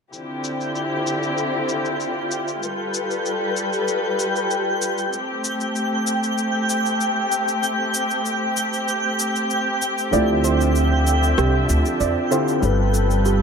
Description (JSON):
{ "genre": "sunset chillout", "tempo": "96 BPM", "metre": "4/4", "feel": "straight", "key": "unclear", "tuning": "A4 = 440 Hz", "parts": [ { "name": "muted studio string section", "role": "sustained chords", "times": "0.1-13.4 s", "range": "D3 to E5", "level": "-23 LUFS", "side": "left 1 dB", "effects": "none" }, { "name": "electronic shaker and rim click", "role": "drums", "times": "0.1-13.4 s", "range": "none", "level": "-29 LUFS", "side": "left 2 dB", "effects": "low-pass filter on perc, low-pass filter on snare" }, { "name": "twinkling granular texture", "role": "texture", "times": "0.5-13.4 s", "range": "G5 to G6", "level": "-26 LUFS", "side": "right 1 dB", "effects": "built-in reverb" }, { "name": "dark baby grand piano", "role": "accompaniment", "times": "10.1-13.4 s", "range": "D3 to B4", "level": "-22 LUFS", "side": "moving between left 3 dB and right 4 dB", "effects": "auto-pan, ping-pong delay" }, { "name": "steel pan", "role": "arpeggios", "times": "10.1-13.4 s", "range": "G4 to D5", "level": "-26 LUFS", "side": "right 8 dB", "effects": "ping-pong delay" }, { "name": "upright bass", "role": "bass", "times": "10.1-13.4 s", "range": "G1 to F2", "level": "-19 LUFS", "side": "equal", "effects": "none" } ], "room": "moderate concert hall reverb, RT60 2.2 s", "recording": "dark, warm production", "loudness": "-19 LUFS", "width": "side -6 dB against mid", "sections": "0.1-13.4 A section", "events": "none", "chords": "0.1 Dm11; 2.6 G9; 5.1 Am7; 10.1 Dm11; 12.6 G9" }